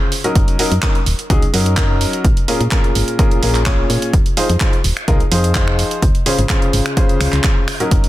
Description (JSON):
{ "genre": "piano house", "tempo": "127 BPM", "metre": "4/4", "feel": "straight", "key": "unclear", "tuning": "A4 = 439 Hz", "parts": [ { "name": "warm grand piano", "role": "riff", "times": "0.0-8.1 s", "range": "Bb2 to Db5", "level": "-19 LUFS", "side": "left 1 dB", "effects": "sidechain pumping, tape echo" }, { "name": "house drum kit", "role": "drums", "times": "0.1-8.1 s", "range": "finger snaps, handclaps, hi-hat", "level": "-21 LUFS", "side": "right 2 dB", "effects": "soft clipping on snare" }, { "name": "solid FM bass", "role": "bass", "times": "0.4-8.0 s", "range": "Eb1 to Bb2", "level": "-17 LUFS", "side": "equal", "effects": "sidechain pumping" }, { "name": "electronic kick drum", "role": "drums", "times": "0.4-8.0 s", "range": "none", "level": "-16 LUFS", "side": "equal", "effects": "none" } ], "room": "digital ambience", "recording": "dense, heavily limited modern master", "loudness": "-13 LUFS", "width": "side -15 dB against mid", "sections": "0.0-8.1 A section", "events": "none", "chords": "0.1 Gb6; 2.2 Bbm7; 4.1 Fm7; 6.0 Dbmaj7" }